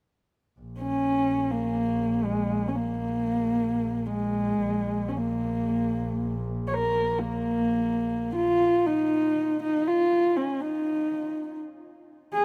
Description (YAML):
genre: mongolian traditional, Mongolian folk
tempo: free time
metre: none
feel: none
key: Bb yu mode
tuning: A4 = 438 Hz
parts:
  - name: clear double bass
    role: drone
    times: 0.6-8.6 s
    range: Bb1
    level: -35 LUFS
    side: equal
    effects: none
  - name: dark horsehead fiddle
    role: melody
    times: 0.8-12.4 s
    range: Ab3 to Db5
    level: -27 LUFS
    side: equal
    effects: none
room: moderate huge ambient reverb, RT60 5.0 s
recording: none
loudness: -26 LUFS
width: mono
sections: 0.6-8.6 A section; 8.6-12.4 B section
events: none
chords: none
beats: free time